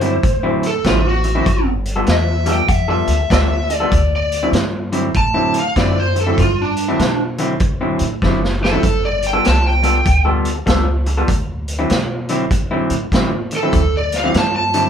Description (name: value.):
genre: electric blues shuffle.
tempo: 98 BPM.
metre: 4/4.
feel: swing 64% on 8ths.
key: D mixolydian.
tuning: A4 = 440 Hz.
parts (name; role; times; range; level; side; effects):
lead guitar through a small cranked amp; melody; 0.0-14.9 s; D4 to A5; -18 LUFS; equal; overdrive.
electric guitar through a small old amp; riff; 0.0-14.9 s; D3 to A4; -20 LUFS; left 1 dB; none.
upright bass; bass; 0.0-14.9 s; F#1 to C3; -20 LUFS; equal; none.
vintage drum kit; drums; 0.0-14.8 s; hi-hat, kick drum, snare drum; -20 LUFS; equal; none.
room: moderate studio reverb, RT60 0.6 s.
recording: band playing live in one room.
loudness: -14 LUFS.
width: side -8 dB against mid.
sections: 0.0-14.9 A section.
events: drum fill 8.2-8.8.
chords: 0.0 D9; 1.5 G9; 3.9 D9; 8.8 G9; 11.3 D9.